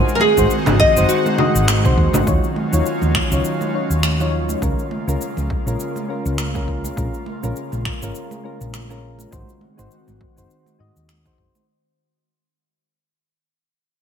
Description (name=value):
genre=sunset chillout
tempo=102 BPM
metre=4/4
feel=swing 57% on 16ths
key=Eb dorian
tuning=A4 = 439 Hz
part: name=soft electric-piano-like synth keys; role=accompaniment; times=0.0-11.7 s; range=Gb3 to Eb5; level=-25 LUFS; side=left 1 dB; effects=chorus, auto-pan, ping-pong delay
part: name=airy breathy pad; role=sustained chords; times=0.0-11.7 s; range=Db3 to Gb4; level=-25 LUFS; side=left 1 dB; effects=chorus
part: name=electronic cabasa, congas and finger snaps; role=drums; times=0.1-11.7 s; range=none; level=-24 LUFS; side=left 1 dB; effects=gated reverb
part: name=nylon-string guitar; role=melody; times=0.2-1.9 s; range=Gb4 to Eb5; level=-18 LUFS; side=right 1 dB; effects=wide subtle chorus, digital delay
part: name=congas and bongos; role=percussion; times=0.2-11.7 s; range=none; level=-30 LUFS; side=right 6 dB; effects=none
part: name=woody fretless electric bass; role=bass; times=0.4-11.5 s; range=Gb1 to Ab2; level=-20 LUFS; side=equal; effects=none
part: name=electronic kick drum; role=drums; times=0.4-11.5 s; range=none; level=-23 LUFS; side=equal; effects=none
room=moderate lush hall reverb, RT60 2.3 s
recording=bright 1980s-style digital production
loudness=-16 LUFS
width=side -7 dB against mid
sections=0.0-2.3 A section; 2.3-11.7 B section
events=fade-out 2.3-11.7; filter sweep on analog synth pad 2.3-11.7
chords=0.0 Ab7; 2.3 Ebm9; 4.6 Db6; 7.0 Bbm7; 9.3 Ab7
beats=0.50 1.09 1.68 | 2.26 2.85 3.44 4.03 | 4.62 5.20 5.79 6.38 | 6.97 7.56 8.14 8.73 | 9.32 9.91 10.50 11.09